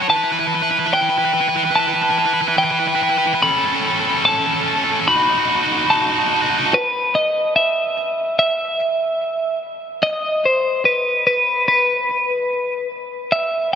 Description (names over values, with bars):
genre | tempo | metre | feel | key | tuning
rock | 73 BPM | 4/4 | straight | E dorian | A4 = 439 Hz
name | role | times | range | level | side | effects
twelve-string electric guitar | melody | 0.0-13.7 s | B4 to B5 | -17 LUFS | left 1 dB | spring reverb, analog delay
distorted electric guitar | riff | 0.0-6.7 s | C#4 to C#5 | -18 LUFS | right 1 dB | distortion
room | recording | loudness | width
moderate huge ambient reverb, RT60 6.7 s | none | -15 LUFS | side -8 dB against mid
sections
0.0-6.7 A section; 6.7-13.8 B section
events
build-up 0.0-6.7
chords
0.1 Em; 3.4 Aadd9/C#; 5.1 B7; 6.7 N.C.